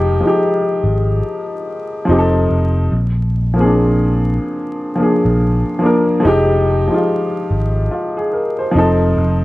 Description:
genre	lo-fi hip hop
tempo	72 BPM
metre	4/4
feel	swing 60% on 16ths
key	F dorian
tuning	A4 = 442 Hz
part	dark upright piano	accompaniment	0.0-9.4 s	F3 to C5	-15 LUFS	equal	low-pass filter
part	picked electric bass	bass	0.0-9.4 s	F1 to Bb1	-16 LUFS	equal	none
room	moderate echo chamber reverb, RT60 1.8 s, studio reverb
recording	vinyl crackle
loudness	-13 LUFS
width	side -18 dB against mid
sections	0.0-9.4 A section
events	none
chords	0.0 Fm9; 2.1 F7; 2.9 Bb7; 6.2 Fm9; 8.7 F7

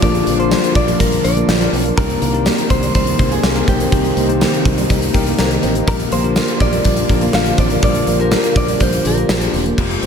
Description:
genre	1980s-style pop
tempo	123 BPM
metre	4/4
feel	straight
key	unclear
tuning	A4 = 440 Hz
part	direct-recorded clean electric guitar	melody	0.0-9.5 s	G4 to F5	-21 LUFS	equal	wide subtle chorus, tape echo
part	bell-like tine electric piano	accompaniment	0.0-10.1 s	F3 to Bb5	-20 LUFS	left 5 dB	none
part	string machine, cellos	sustained chords	0.0-10.1 s	Bb2 to G4	-23 LUFS	right 1 dB	ensemble chorus
part	electric guitar at the edge of break-up	riff	0.0-10.1 s	F3 to C4	-25 LUFS	right 5 dB	none
part	fingered electric bass	bass	0.0-10.1 s	E1 to C2	-21 LUFS	equal	none
part	gated 80s drum kit	drums	0.0-10.1 s	crash cymbal, hi-hat, kick drum, snare drum, tambourine	-17 LUFS	equal	none
room	wet huge ambient reverb, RT60 9.3 s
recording	dreamy mix soaked in reverb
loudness	-13 LUFS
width	side -7 dB against mid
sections	0.0-9.8 A section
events	tine electric piano fill 4.9-5.9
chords	0.0 Bb; 2.0 Cm7; 5.9 Gm7

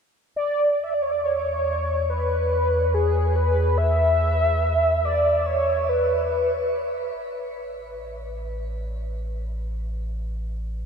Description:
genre	ambient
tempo	71 BPM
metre	4/4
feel	straight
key	E mixolydian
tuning	A4 = 440 Hz
part	round analog bass	bass	0.3-10.9 s	A1 to E2	-26 LUFS	equal	tube saturation
part	warm velvety synth lead	melody	0.4-6.7 s	G#4 to E5	-22 LUFS	equal	chorus, shimmer reverb, tape echo
room	wet huge ambient reverb, RT60 7.2 s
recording	dark, warm production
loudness	-21 LUFS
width	side -6 dB against mid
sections	0.3-10.9 A section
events	fade-out on analog synth bass 0.3-10.9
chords	0.3 E5; 7.2 N.C.

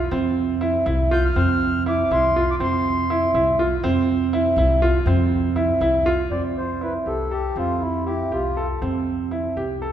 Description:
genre	contemporary instrumental, chamber music in an uneven meter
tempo	241 BPM (eighths)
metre	5/8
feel	straight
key	F major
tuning	A4 = 439 Hz
part	clear baby grand piano	arpeggios	0.0-9.9 s	C4 to A4	-20 LUFS	right 2 dB	none
part	upright bass	bass	0.0-9.9 s	C2 to F2	-24 LUFS	left 1 dB	none
part	mellow accordion	melody	1.1-3.3, 6.3-8.7 s	E4 to G6	-26 LUFS	left 2 dB	none
room	wet concert hall reverb, RT60 2.3 s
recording	heard from further back in the room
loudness	-18 LUFS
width	side -10 dB against mid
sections	0.0-6.3 A section; 6.3-9.9 B section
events	none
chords	0.0 F5; 6.3 Fmaj7

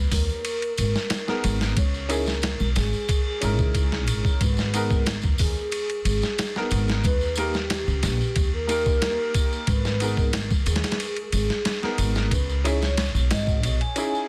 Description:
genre	trip hop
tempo	91 BPM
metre	4/4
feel	straight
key	G# harmonic minor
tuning	A4 = 441 Hz
part	pure breathy sine lead	melody	0.0-14.3 s	G4 to G#5	-33 LUFS	equal	lush chorus, dub echo
part	upright bass	bass	0.0-13.8 s	G#1 to D#2	-27 LUFS	equal	tube saturation
part	boom bap sampler-style drum kit	drums	0.1-14.1 s	hi-hat, kick drum, ride cymbal, snare drum	-28 LUFS	equal	none
part	tambourine and triangle	percussion	0.1-14.3 s	none	-38 LUFS	equal	none
part	clear upright piano	accompaniment	1.3-14.3 s	A#3 to A#4	-32 LUFS	equal	harmonic tremolo
room	little or no reverb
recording	dense, heavily limited modern master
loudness	-24 LUFS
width	mono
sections	0.0-14.3 A section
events	none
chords	0.0 G#madd9; 1.8 C#madd9; 4.4 G#madd9; 7.0 D#; 9.7 G#madd9; 12.3 C#madd9

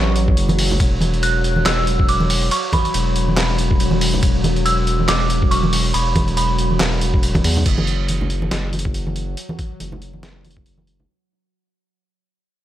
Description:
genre	deep dubstep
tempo	140 BPM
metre	4/4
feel	swing 57% on 16ths, half-time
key	unclear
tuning	A4 = 440 Hz
part	bowed-like drone	sustained chords	0.0-11.1 s	F#3	-25 LUFS	equal	built-in reverb
part	saturated sub bass	bass	0.0-11.1 s	E1 to E2	-20 LUFS	equal	none
part	trip hop sampler-style drum kit	drums	0.2-11.0 s	crash cymbal, handclaps, hi-hat, ride cymbal, snare drum	-23 LUFS	equal	small room ambience
part	electronic kick drum	drums	0.3-10.6 s	none	-18 LUFS	equal	small room ambience
part	congas	percussion	0.5-11.1 s	none	-24 LUFS	right 1 dB	none
part	dark detuned synth bell	melody	1.2-6.8 s	B5 to F#6	-23 LUFS	right 1 dB	chorus, dub echo
room	digital ambience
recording	none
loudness	-15 LUFS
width	side -12 dB against mid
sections	0.0-7.7 A section; 7.7-11.1 B section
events	drop 0.0-7.7; fade-out 7.7-11.1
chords	0.0 F#m; 0.8 E5; 7.7 N.C.

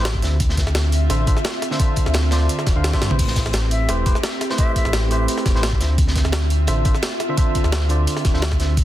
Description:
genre	liquid drum and bass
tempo	172 BPM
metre	4/4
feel	straight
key	unclear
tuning	A4 = 440 Hz
part	tine electric piano	accompaniment	0.0-8.7 s	D3 to F5	-26 LUFS	equal	overdrive, ping-pong delay
part	airy breathy pad	sustained chords	0.0-8.8 s	C4 to E5	-28 LUFS	right 2 dB	chorus, vintage 12-bit sampler grit, sidechain pumping
part	sub bass with octave	bass	0.0-8.8 s	D1 to G2	-19 LUFS	equal	none
part	crunchy breakbeat drum kit	drums	0.1-8.8 s	hi-hat, snare drum	-30 LUFS	equal	high-pass filter on hats, high-pass filter on snare, high-pass filter on room
part	electronic kick drum	drums	0.1-8.8 s	none	-19 LUFS	equal	none
part	jungle sampler-style drum kit	drums	0.1-8.8 s	crash cymbal, hi-hat, snare drum, toms	-26 LUFS	equal	none
part	reedy concert flute	melody	3.7-5.3 s	E5	-31 LUFS	left 3 dB	ping-pong delay
room	little or no reverb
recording	dense, heavily limited modern master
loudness	-17 LUFS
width	side -13 dB against mid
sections	0.0-8.8 A section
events	drum fill 2.9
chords	0.2 Dm9; 3.2 Am7; 5.8 Dm9

